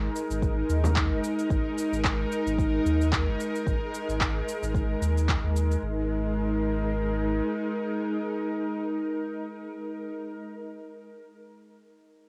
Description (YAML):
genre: organic downtempo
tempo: 111 BPM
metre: 4/4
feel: swing 56% on 16ths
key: unclear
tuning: A4 = 444 Hz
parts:
  - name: bowed-like drone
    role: sustained chords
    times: 0.0-10.1 s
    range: G#3 to A#4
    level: -31 LUFS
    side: equal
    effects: built-in reverb, sidechain pumping
  - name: warm sub bass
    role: bass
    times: 0.0-7.4 s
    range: E#1 to D#2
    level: -30 LUFS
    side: equal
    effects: none
  - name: electronic cabasa and handclaps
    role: drums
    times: 0.2-5.8 s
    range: none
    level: -34 LUFS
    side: equal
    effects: cassette tape
  - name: electronic kick drum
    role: drums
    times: 0.4-5.4 s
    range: none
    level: -32 LUFS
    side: equal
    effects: cassette tape
  - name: frame drum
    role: percussion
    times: 0.8-0.9 s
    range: none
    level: -34 LUFS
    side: equal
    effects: none
room: moderate studio reverb, RT60 0.6 s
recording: home recording on cassette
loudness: -28 LUFS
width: mono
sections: 0.0-5.8 A section; 5.8-10.2 B section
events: none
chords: 0.0 G#sus2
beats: 0.42 0.96 | 1.50 2.04 2.58 3.13 | 3.67 4.21 4.75 5.29 | 5.83 6.37 6.91 7.45 | 7.99 8.53 9.07 9.61